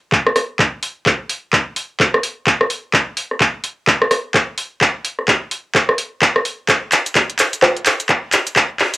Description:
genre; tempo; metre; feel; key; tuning
UK garage, two-step garage; 128 BPM; 4/4; swing 61% on 16ths; none; none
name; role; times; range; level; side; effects
electronic kick drum; drums; 0.1-8.7 s; none; -22 LUFS; equal; high-pass filter on kick, cassette tape
garage drum kit; drums; 0.1-9.0 s; bongos, handclaps, hi-hat, rim click, shaker; -14 LUFS; equal; high-pass filter on hats, cassette tape, high-pass filter on snare, high-pass filter on perc, high-pass filter on room
room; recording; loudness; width
moderate studio reverb, RT60 0.5 s; home recording on cassette; -14 LUFS; side -18 dB against mid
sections
0.0-9.0 A section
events
build-up 0.0-9.0; drum fill 0.0-9.0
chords
none

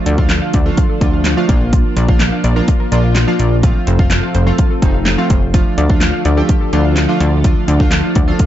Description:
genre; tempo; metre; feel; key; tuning
dance-pop; 126 BPM; 4/4; straight; unclear; A4 = 443 Hz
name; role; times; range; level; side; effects
chorused retro synth keys; accompaniment; 0.0-8.5 s; F3 to G4; -19 LUFS; right 2 dB; tremolo, sidechain pumping
string machine, full ensemble; sustained chords; 0.0-8.5 s; D3 to A4; -24 LUFS; left 1 dB; ensemble chorus, sidechain pumping
glassy wavetable pluck; arpeggios; 0.1-8.5 s; F4 to F6; -26 LUFS; left 2 dB; chorus, sidechain pumping, digital delay
plucky analog bass; bass; 0.1-8.3 s; F1 to D2; -14 LUFS; equal; sidechain pumping
pop drum kit; drums; 0.1-8.5 s; handclaps, hi-hat, kick drum, snare drum; -14 LUFS; equal; overdrive
room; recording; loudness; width
digital ambience; dark, warm production, nothing above 7.7 kHz; -11 LUFS; side -12 dB against mid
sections
0.0-8.5 A section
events
none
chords
0.0 Dm; 1.5 Bb; 3.6 F; 5.5 Dm

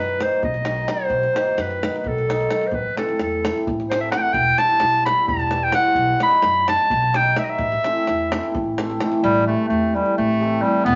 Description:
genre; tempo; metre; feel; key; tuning
balkan folk, Balkan wedding band; 258 BPM (eighths); 7/8; straight; A dorian sharp4; A4 = 440 Hz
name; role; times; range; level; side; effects
warm clarinet; melody; 0.0-11.0 s; G3 to B5; -21 LUFS; equal; none
cimbalom; accompaniment; 0.0-10.9 s; C3 to E4; -28 LUFS; equal; none
upright bass; bass; 0.0-11.0 s; E1 to F#2; -31 LUFS; equal; none
davul; percussion; 0.2-9.2 s; none; -31 LUFS; equal; none
room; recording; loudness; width
wet studio reverb, RT60 0.7 s; vinyl crackle, nothing above 7.5 kHz; -20 LUFS; mono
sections
0.0-9.2 A section; 9.2-11.0 B section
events
clarinet solo 0.0-9.2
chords
0.0 B; 2.7 Am; 4.3 Em; 6.0 B; 7.6 Am

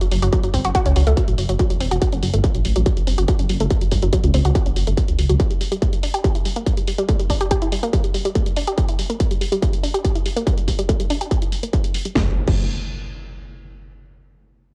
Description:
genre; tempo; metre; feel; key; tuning
driving peak-time techno; 142 BPM; 4/4; straight; unclear; A4 = 440 Hz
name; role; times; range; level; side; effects
analog pluck; riff; 0.0-12.7 s; F#3 to G4; -26 LUFS; equal; chorus, sidechain pumping, analog delay
dark detuned saw bass; bass; 0.0-5.4, 12.2-12.7 s; E1 to C#2; -22 LUFS; equal; sidechain pumping
techno drum kit; drums; 0.0-12.6 s; crash cymbal, hi-hat, snare drum; -31 LUFS; equal; sidechain pumping on hats, cassette tape, sidechain pumping on cymbals
impact; sound effects; 0.1-0.3, 12.2-13.8 s; none; -32 LUFS; equal; none
electronic kick drum; drums; 0.3-12.6 s; none; -22 LUFS; equal; distortion, cassette tape
room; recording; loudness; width
digital ambience; home recording on cassette; -20 LUFS; mono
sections
0.0-12.2 A section; 12.2-13.8 B section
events
impact 0.0-0.3; filter sweep on synth arpeggio sound 0.0-12.2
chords
0.0 F#m; 5.4 N.C.

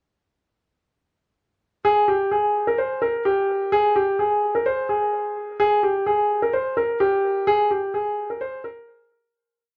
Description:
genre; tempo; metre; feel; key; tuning
hip hop, trap; 128 BPM; 4/4; half-time; unclear; A4 = 441 Hz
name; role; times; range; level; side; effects
warm concert grand piano; solo; 1.8-9.3 s; G4 to C5; -22 LUFS; equal; low-pass filter, tape echo
room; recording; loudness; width
wet studio ambience, RT60 0.5 s; none; -22 LUFS; mono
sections
1.8-9.3 breakdown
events
fade-out 7.5-9.3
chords
none

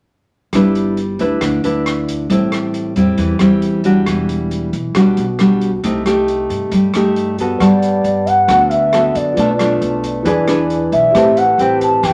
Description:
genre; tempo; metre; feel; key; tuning
bossa nova; 136 BPM; 4/4; straight; G major; A4 = 440 Hz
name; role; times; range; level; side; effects
nylon-string guitar; accompaniment; 0.5-12.1 s; A2 to B4; -17 LUFS; equal; none
upright bass; bass; 0.5-12.1 s; E1 to G2; -27 LUFS; equal; none
open jazz drum kit; drums; 0.5-12.1 s; hi-hat, kick drum, rim click; -29 LUFS; equal; none
mellow bass bansuri; melody; 7.6-12.1 s; D5 to A5; -16 LUFS; equal; none
tine electric piano; accompaniment; 7.6-12.1 s; E4 to A5; -23 LUFS; equal; none
room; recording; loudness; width
wet studio reverb, RT60 0.8 s; none; -15 LUFS; mono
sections
0.5-7.6 A section; 7.6-12.1 B section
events
none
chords
0.5 G6; 2.3 Am7; 4.1 Em9; 5.8 Cm6; 7.6 Gmaj9; 9.4 Bm7b5; 10.3 E7; 11.1 Am9

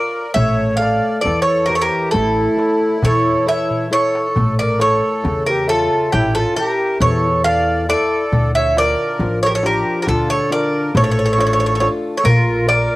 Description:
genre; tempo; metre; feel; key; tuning
greek folk, Greek bouzouki band; 136 BPM (eighths); 9/8; straight; A phrygian dominant; A4 = 440 Hz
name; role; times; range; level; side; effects
Greek bouzouki; melody; 0.0-13.0 s; G4 to F5; -17 LUFS; right 1 dB; cassette tape
accordion; second line; 0.0-13.0 s; E4 to D5; -22 LUFS; equal; light tremolo tuning, cassette tape, analog delay
fingerpicked plugged-in swing-style acoustic guitar; accompaniment; 0.0-13.0 s; C#3 to E5; -22 LUFS; left 2 dB; cassette tape
upright bass; bass; 0.4-12.9 s; A1 to E2; -21 LUFS; equal; none
darbuka; percussion; 0.4-12.9 s; none; -22 LUFS; left 1 dB; none
room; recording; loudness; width
moderate studio reverb, RT60 0.6 s; home recording on cassette; -14 LUFS; side -18 dB against mid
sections
0.0-4.4 A section; 4.4-13.0 B section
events
speeding up 0.0-13.0; drum fill 3.7-4.4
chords
0.4 A; 8.3 Dm; 12.2 Bb

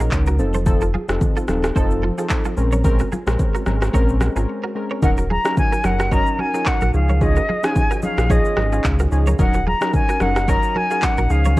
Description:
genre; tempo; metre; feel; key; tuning
afrobeats; 110 BPM; 4/4; swing 55% on 16ths; Eb dorian; A4 = 440 Hz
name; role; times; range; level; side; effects
warm analog keys; accompaniment; 0.0-11.6 s; F3 to Bb4; -23 LUFS; equal; chorus
direct-recorded clean electric guitar; riff; 0.0-11.5 s; F4 to Db5; -30 LUFS; right 4 dB; analog chorus, ping-pong delay
sub bass with octave; bass; 0.0-11.6 s; Eb1 to Db2; -19 LUFS; equal; none
afro-pop drum kit; drums; 0.0-11.6 s; handclaps, kick drum, rim click, shaker; -20 LUFS; equal; none
congas; percussion; 0.3-11.6 s; none; -28 LUFS; left 1 dB; none
silver concert flute; melody; 5.0-11.6 s; Eb5 to Bb5; -22 LUFS; left 1 dB; none
room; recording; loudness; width
digital ambience; worn, warbling old tape, cassette tape, warbly pitch drift; -16 LUFS; side -18 dB against mid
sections
0.0-5.0 A section; 5.0-11.6 B section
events
break 4.5-5.0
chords
0.4 F7; 2.6 Bbm9; 5.0 Ebm7; 6.9 Dbadd9; 9.4 Ebm7

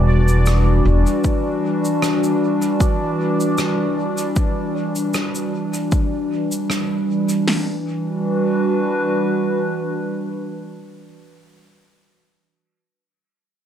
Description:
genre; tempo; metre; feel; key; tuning
ambient dub; 77 BPM; 4/4; straight; E minor; A4 = 440 Hz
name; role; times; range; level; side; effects
warbly tape-like pad; sustained chords; 0.0-11.4 s; E3 to B4; -19 LUFS; equal; chorus, built-in reverb
upright bass; bass; 0.0-1.0 s; E1; -14 LUFS; equal; none
bubbling stepped-filter texture; texture; 0.0-7.5 s; D5; -29 LUFS; right 5 dB; chorus, built-in reverb
shaker and rim click; drums; 0.3-7.4 s; none; -28 LUFS; equal; dub echo
deep house drum kit; drums; 1.2-7.7 s; hi-hat, kick drum, snare drum; -19 LUFS; equal; overdrive
room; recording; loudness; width
light reverb; none; -17 LUFS; side -9 dB against mid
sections
0.0-7.5 A section; 7.5-10.6 B section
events
none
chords
0.0 Em9

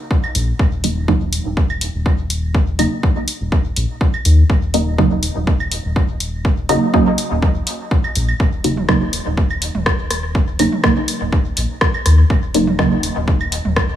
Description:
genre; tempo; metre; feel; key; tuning
dub techno; 123 BPM; 4/4; swing 53% on 16ths; Eb minor; A4 = 440 Hz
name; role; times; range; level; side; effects
electronic kick drum; drums; 0.1-13.9 s; none; -16 LUFS; equal; none
electronic claves and toms; percussion; 0.2-13.7 s; none; -28 LUFS; right 4 dB; overdrive, sidechain pumping on perc, sidechain pumping on toms, dub echo
round analog bass; bass; 0.3-14.0 s; Eb1 to Eb2; -19 LUFS; left 1 dB; tube saturation, sidechain pumping
deep house drum kit; drums; 0.3-13.9 s; hi-hat, rim click; -22 LUFS; left 1 dB; dub echo
filtered dub chord stab; stabs; 0.8-12.9 s; Db3 to Eb4; -19 LUFS; right 2 dB; chorus, phaser, sidechain pumping, dub echo
room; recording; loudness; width
light reverb; small room ambience; -14 LUFS; side -11 dB against mid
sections
0.0-14.0 A section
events
none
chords
0.0 Ebm7

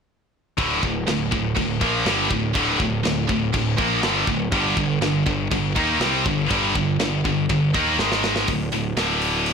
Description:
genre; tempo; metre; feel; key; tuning
heavy metal; 122 BPM; 4/4; straight; unclear; A4 = 440 Hz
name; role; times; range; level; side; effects
heavy high-gain guitar; riff; 0.6-9.5 s; D2 to Eb4; -24 LUFS; left 11 dB; distortion
heavy high-gain guitar; riff; 0.6-9.5 s; D2 to Eb4; -25 LUFS; right 11 dB; distortion
heavy high-gain guitar; riff; 0.6-8.5 s; D2 to Eb4; -26 LUFS; equal; distortion
fuzz picked electric bass; bass; 0.6-9.5 s; D1 to Eb2; -28 LUFS; equal; overdrive
tight metal drum kit; drums; 0.6-9.5 s; china cymbal, hi-hat, kick drum, snare drum; -26 LUFS; equal; soft clipping on kick
room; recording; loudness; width
light reverb; blown-out, overdriven recording, overdrive; -19 LUFS; side -6 dB against mid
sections
0.6-8.5 A section; 8.5-9.5 B section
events
drum fill 8.0-8.5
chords
0.6 D5; 4.5 G5; 8.0 G#5; 8.5 D5

